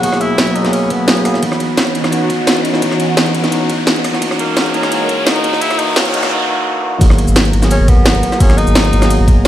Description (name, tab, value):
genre	liquid drum and bass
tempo	172 BPM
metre	4/4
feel	straight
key	G# minor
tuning	A4 = 435 Hz
part	warm tenor saxophone	melody	0.0-1.3, 4.4-9.5 s	A#3 to F#4	-20 LUFS	equal	dub echo
part	bell-like tine electric piano	accompaniment	0.0-9.5 s	E3 to A#4	-17 LUFS	equal	dub echo
part	lush unison pad	sustained chords	0.0-9.5 s	E3 to B5	-22 LUFS	equal	chorus, phaser
part	drum and bass drum kit	drums	0.0-9.5 s	hi-hat, rim click, shaker, snare drum	-18 LUFS	equal	none
part	electronic kick drum	drums	0.0-9.4 s	none	-11 LUFS	equal	high-pass filter on kick, high-pass filter on room
part	jungle sampler-style drum kit	drums	0.0-9.5 s	hi-hat, ride cymbal, snare drum	-21 LUFS	equal	high-pass filter on cymbals, high-pass filter on snare, high-pass filter on hats
part	riser and noise sweep	sound effects	0.3-7.0 s	none	-22 LUFS	equal	none
part	sub bass with octave	bass	7.0-9.5 s	G#1	-13 LUFS	equal	none
room	moderate plate reverb, RT60 2.5 s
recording	played on a big sound system in a bare room, stone room reverb, high-pass filter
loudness	-11 LUFS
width	side -12 dB against mid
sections	0.0-7.0 A section; 7.0-9.5 B section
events	build-up 0.0-7.0; filter sweep on analog synth pad 0.0-7.0; filter sweep 0.0-7.0; riser 0.3-6.3; noise sweep 5.6-7.0; break 6.3-7.0; drop 7.0-9.5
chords	0.0 G#m9; 1.4 C#m11; 4.2 A#m7b5; 7.0 G#m9